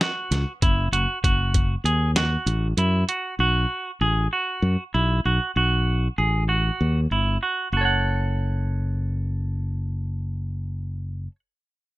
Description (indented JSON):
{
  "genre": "progressive instrumental, band music in an uneven meter",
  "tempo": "194 BPM (eighths)",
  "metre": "7/8",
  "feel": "straight",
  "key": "F# dorian",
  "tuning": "A4 = 440 Hz",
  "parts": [
    { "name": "clean electric guitar", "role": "arpeggios", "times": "0.0-11.4 s", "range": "E4 to F#5", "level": "-24 LUFS", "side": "right 2 dB", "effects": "none" },
    { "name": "lo-fi sampler-style drum kit", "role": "drums", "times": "0.0-3.2 s", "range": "hi-hat, kick drum, snare drum", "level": "-22 LUFS", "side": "equal", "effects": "none" },
    { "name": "modern bright fingered electric bass", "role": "bass", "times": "0.3-11.3 s", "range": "F#1 to F#2", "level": "-22 LUFS", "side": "equal", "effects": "none" }
  ],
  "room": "light reverb",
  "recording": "none",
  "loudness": "-21 LUFS",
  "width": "side -17 dB against mid",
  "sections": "0.0-7.7 A section; 7.7-12.0 B section",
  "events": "none",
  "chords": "0.0 N.C.; 3.4 B7(no3); 7.7 F#m"
}